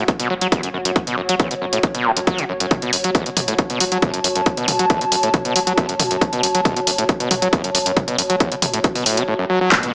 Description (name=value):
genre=driving peak-time techno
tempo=137 BPM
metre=4/4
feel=straight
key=F# minor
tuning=A4 = 438 Hz
part: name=screaming distorted acid line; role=riff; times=0.0-9.9 s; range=E2 to F#3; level=-21 LUFS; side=equal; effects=distortion, chorus, sidechain pumping, tape echo
part: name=saturated sub bass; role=bass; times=0.0-9.9 s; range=F#1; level=-40 LUFS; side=equal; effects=none
part: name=warbly tape-like pad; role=texture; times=0.0-9.3 s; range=F#4 to A5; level=-23 LUFS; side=equal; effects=chorus, built-in reverb, sidechain pumping
part: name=electronic kick drum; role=drums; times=0.1-9.8 s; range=none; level=-18 LUFS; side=equal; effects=none
part: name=punchy analog drum machine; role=drums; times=0.1-9.9 s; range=handclaps, hi-hat, toms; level=-20 LUFS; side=equal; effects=none
part: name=impact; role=sound effects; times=9.7-9.9 s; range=none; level=-26 LUFS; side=equal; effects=none
room=moderate digital room reverb, RT60 1.1 s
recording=small speaker sound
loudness=-16 LUFS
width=side -29 dB against mid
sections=0.0-9.7 A section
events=fade-in on ambient pad 0.0-9.7; impact 9.7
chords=0.0 F#5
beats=0.08 0.52 | 0.96 1.40 1.83 2.27 | 2.71 3.15 3.59 4.02 | 4.46 4.90 5.34 5.78 | 6.21 6.65 7.09 7.53 | 7.97 8.40 8.84 9.28 | 9.72